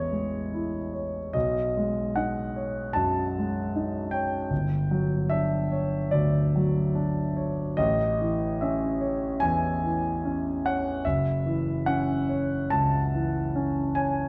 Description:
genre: classical, impressionist solo piano.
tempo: 73 BPM.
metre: 4/4.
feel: rubato.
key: unclear.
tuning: A4 = 440 Hz.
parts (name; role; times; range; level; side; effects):
warm grand piano; solo; 0.0-14.3 s; F#1 to A5; -27 LUFS; equal; none.
room: wet scoring stage reverb, RT60 1.5 s.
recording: dark, warm production.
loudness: -27 LUFS.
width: mono.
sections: 0.0-14.3 A section.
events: none.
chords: 0.0 Amaj7; 1.3 B13; 4.5 G5; 7.8 Amaj7; 11.0 F#m7.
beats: 0.53 | 1.35 2.15 2.96 3.75 | 4.51 5.30 6.12 6.95 | 7.77 8.60 9.41 10.23 | 11.05 11.88 12.72 13.56.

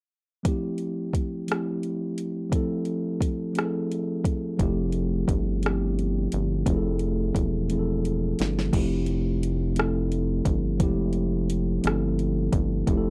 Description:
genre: slow six-eight R&B.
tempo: 58 BPM (dotted quarters).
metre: 6/8.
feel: straight.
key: F major.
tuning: A4 = 441 Hz.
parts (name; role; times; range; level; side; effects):
mellow tine electric piano; accompaniment; 0.4-13.1 s; F3 to A4; -29 LUFS; equal; none.
smooth R&B drum kit; drums; 0.5-13.0 s; crash cymbal, hi-hat, kick drum, rim click, snare drum; -29 LUFS; equal; none.
rubbery square bass; bass; 4.6-13.1 s; E1 to G1; -30 LUFS; equal; none.
room: little or no reverb.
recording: dry, close 1970s-style studio recording.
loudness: -26 LUFS.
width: mono.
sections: 0.5-8.7 A section; 8.7-13.1 B section.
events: drum fill 7.7-8.7.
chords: 0.5 Fmaj9.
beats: | 0.46 1.49 | 2.52 3.56 | 4.59 5.63 | 6.66 7.70 | 8.73 9.77 | 10.80 11.84 | 12.87.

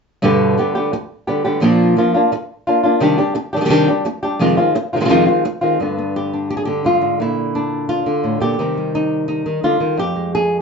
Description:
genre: flamenco.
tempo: 172 BPM.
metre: 4/4.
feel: straight.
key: G phrygian dominant.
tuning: A4 = 440 Hz.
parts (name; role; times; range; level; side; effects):
flamenco guitar; solo; 0.2-10.6 s; F2 to Ab4; -14 LUFS; equal; none.
room: wet studio reverb, RT60 0.5 s.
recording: band playing live in one room, nothing above 7.7 kHz.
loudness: -15 LUFS.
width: side -5 dB against mid.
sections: 0.2-5.8 A section; 5.8-10.6 B section.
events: none.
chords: 0.2 G; 1.6 Bb; 3.0 Cmadd9; 4.4 Fm7; 5.8 G; 7.2 Bb; 8.6 Cm; 10.0 Fm.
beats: | 0.23 0.57 0.92 1.27 | 1.62 1.97 2.32 2.67 | 3.02 3.37 3.71 4.06 | 4.41 4.76 5.11 5.46 | 5.80 6.15 6.50 6.85 | 7.20 7.55 7.89 8.24 | 8.59 8.94 9.29 9.63 | 9.98 10.33.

